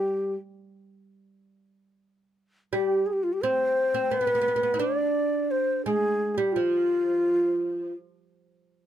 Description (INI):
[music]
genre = turkish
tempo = 172 BPM (eighths)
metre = 9/8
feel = straight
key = G makam hicaz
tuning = A4 = 439 Hz
[part]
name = breathy mellow ney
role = melody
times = 0.0-7.9 s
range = F4 to D5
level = -24 LUFS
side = left 1 dB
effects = none
[part]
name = oud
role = second line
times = 0.0-7.9 s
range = F3 to E4-40c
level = -30 LUFS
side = right 7 dB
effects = none
[sound]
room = light reverb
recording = close, detailed microphones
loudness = -23 LUFS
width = side -10 dB against mid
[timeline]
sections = 0.0-8.9 A section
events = none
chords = none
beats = 0.29 0.64 0.99 1.34 1.69 2.04 2.38 | 2.73 3.08 3.43 3.78 4.12 4.47 4.82 5.17 5.52 | 5.87 6.21 6.56 6.91 7.26 7.61